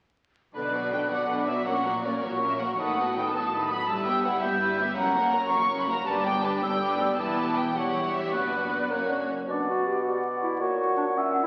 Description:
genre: classical.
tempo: 108 BPM (dotted quarters).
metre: 6/8.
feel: rubato.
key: B minor.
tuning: A4 = 440 Hz.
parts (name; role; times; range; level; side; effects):
clear studio violin section; second line; 0.5-9.3 s; D4 to E5; -34 LUFS; equal; none.
clear symphonic double bass section; bass; 0.5-9.3 s; E1 to B1; -45 LUFS; equal; none.
rich symphonic cello section; bass; 0.5-9.3 s; E2 to B2; -40 LUFS; equal; none.
warm symphonic violin section; melody; 0.6-8.9 s; C#5 to C#6; -32 LUFS; equal; none.
mellow hollow small flute group; second line; 0.6-11.5 s; F#5 to G6; -32 LUFS; equal; none.
rich studio viola section; accompaniment; 0.6-9.3 s; D3 to G4; -34 LUFS; equal; none.
dark bassoon; accompaniment; 8.9-11.5 s; A#2 to D4; -33 LUFS; equal; none.
mellow oboe; second line; 9.5-11.5 s; C#5 to E5; -32 LUFS; equal; none.
warm clarinet; second line; 9.5-11.5 s; C#4 to G4; -31 LUFS; equal; none.
room: wet scoring stage reverb, RT60 1.6 s.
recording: very old 78 rpm record, vinyl crackle.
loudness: -27 LUFS.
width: mono.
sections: 0.6-9.5 A section; 9.5-11.5 A section.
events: none.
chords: 0.6 Bm; 1.7 F#/A#; 2.8 B7/A; 3.9 Em/G; 5.0 F#; 6.1 G; 7.2 Em; 7.7 C#dim/E; 8.3 Bm/F#; 8.9 F#; 9.5 Bm; 10.6 F#/A#.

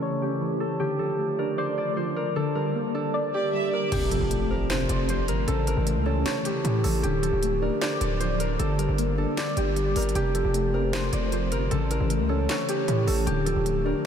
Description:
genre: hip hop, trap.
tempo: 154 BPM.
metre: 4/4.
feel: half-time.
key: D minor.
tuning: A4 = 442 Hz.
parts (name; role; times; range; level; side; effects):
Celtic harp; melody; 0.0-14.1 s; G4 to D5; -28 LUFS; equal; low-pass filter, tape echo.
soft electric-piano-like synth keys; accompaniment; 0.0-14.1 s; C3 to D5; -27 LUFS; equal; chorus, phaser, low-pass filter.
warm studio violin section; second line; 3.3-3.9 s; D5 to E5; -39 LUFS; right 3 dB; tape echo.
distorted 808-style bass; bass; 3.9-13.9 s; D1 to A2; -27 LUFS; equal; distortion.
trap drum kit; drums; 3.9-13.8 s; crash cymbal, handclaps, hi-hat, snare drum; -34 LUFS; equal; none.
impact; sound effects; 3.9-5.5 s; none; -36 LUFS; right 1 dB; none.
room: moderate huge ambient reverb, RT60 8.0 s.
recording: dreamy mix soaked in reverb.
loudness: -23 LUFS.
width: side -8 dB against mid.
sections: 0.0-3.9 A section; 3.9-14.1 B section.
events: filter sweep 0.0-3.9; impact 3.9-5.5.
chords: 0.0 A; 0.8 Dm; 2.4 Gm; 3.9 F; 5.5 A; 7.0 Dm; 8.6 Gm; 10.2 F; 11.7 A; 13.3 Dm.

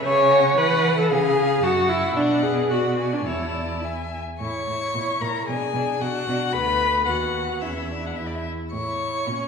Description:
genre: quick classical-period movement for string quartet.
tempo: 112 BPM.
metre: 2/4.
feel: rubato.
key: unclear.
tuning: A4 = 440 Hz.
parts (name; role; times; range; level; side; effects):
rich violin; melody; 0.0-9.5 s; D5 to C#6; -27 LUFS; left 5 dB; none.
rich violin; second line; 0.0-9.5 s; B3 to F#5; -31 LUFS; equal; none.
rich viola; accompaniment; 0.0-9.5 s; D4 to C#5; -22 LUFS; left 1 dB; none.
rich cello; bass; 0.0-9.5 s; D2 to E3; -28 LUFS; right 2 dB; none.
room: wet scoring stage reverb, RT60 1.6 s.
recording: heard from further back in the room.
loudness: -20 LUFS.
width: side -6 dB against mid.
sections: 0.0-4.4 A section; 4.4-9.5 B section.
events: none.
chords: 0.0 C#m; 1.1 C#; 1.6 F#m; 2.2 Bm; 3.3 A/E; 4.4 A; 5.0 A#dim; 5.5 Bm; 6.5 Bm/D; 7.1 B/D#; 7.6 Dmaj7sus2/E; 8.7 A.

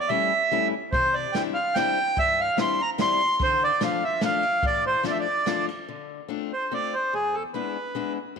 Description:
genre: musette waltz.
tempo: 144 BPM.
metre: 3/4.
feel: straight.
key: D minor.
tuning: A4 = 440 Hz.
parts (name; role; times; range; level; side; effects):
accordion; melody; 0.0-8.1 s; G#4 to C6; -23 LUFS; right 2 dB; none.
picked old ladder-braced acoustic guitar; accompaniment; 0.1-8.4 s; E2 to F4; -30 LUFS; left 12 dB; none.
jazz brush drum kit; drums; 0.9-5.8 s; kick drum, ride cymbal, snare drum; -32 LUFS; right 3 dB; none.
room: moderate echo chamber reverb, RT60 2.2 s.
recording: 1960s-style stereo.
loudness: -22 LUFS.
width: side -6 dB against mid.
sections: 0.0-5.9 A section; 5.9-8.4 B section.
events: none.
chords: 0.0 A7; 0.9 Cadd9; 3.4 Dm; 5.9 Dm7; 7.1 E7.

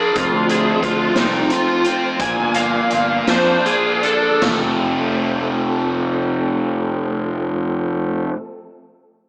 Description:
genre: psychedelic rock.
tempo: 51-60 BPM (dotted quarters).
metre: 6/8.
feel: straight.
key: F major.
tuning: A4 = 440 Hz.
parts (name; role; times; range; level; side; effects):
overdriven slide guitar; melody; 0.0-4.4 s; Eb4 to Ab5; -21 LUFS; equal; ensemble chorus, analog delay.
mellow tonewheel organ; sustained chords; 0.0-8.3 s; F3 to Bb5; -28 LUFS; equal; slow rotary speaker, chorus vibrato.
cranked stack guitar; riff; 0.0-8.4 s; F2 to F4; -24 LUFS; equal; overdrive, phaser.
fuzz fingered electric bass; bass; 0.2-8.3 s; F1 to F2; -25 LUFS; equal; overdrive.
raw garage drum kit; drums; 0.2-4.6 s; hi-hat, kick drum, snare drum, splash cymbal, toms; -26 LUFS; equal; none.
room: wet lush hall reverb, RT60 1.8 s, studio ambience.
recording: dreamy mix soaked in reverb, small speaker sound.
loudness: -18 LUFS.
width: mono.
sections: 0.0-4.4 A section; 4.4-9.1 B section.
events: electric slide guitar solo 0.0-4.4; slowing down 0.1-4.4.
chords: 0.1 F; 2.2 Bb; 4.4 F.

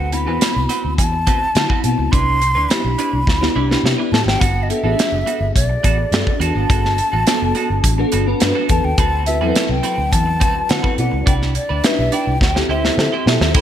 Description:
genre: polished 1980s jazz-funk pop.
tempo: 105 BPM.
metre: 4/4.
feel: straight.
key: G major.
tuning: A4 = 436 Hz.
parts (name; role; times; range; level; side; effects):
breathy concert flute; melody; 0.0-13.6 s; D5 to C6; -21 LUFS; left 1 dB; none.
twelve-string electric guitar; riff; 0.0-13.6 s; B3 to C5; -26 LUFS; right 8 dB; lush chorus.
vintage muted fingered electric bass; bass; 0.0-13.6 s; F#1 to D3; -20 LUFS; equal; none.
bell-like FM electric piano; accompaniment; 0.1-13.6 s; F#3 to D5; -22 LUFS; left 1 dB; ensemble chorus.
modern studio drum kit; drums; 0.1-13.6 s; crash cymbal, hi-hat, kick drum, snare drum; -18 LUFS; equal; gated reverb.
room: light reverb, small room ambience.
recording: bright 1980s-style digital production.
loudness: -14 LUFS.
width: side -10 dB against mid.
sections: 0.0-13.6 A section.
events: drum fill 3.3-4.4, 12.4-13.6.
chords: 0.0 D13; 2.1 Cmaj9; 4.4 Gmaj9; 9.0 D13; 11.3 Cmaj9; 12.4 D9sus4.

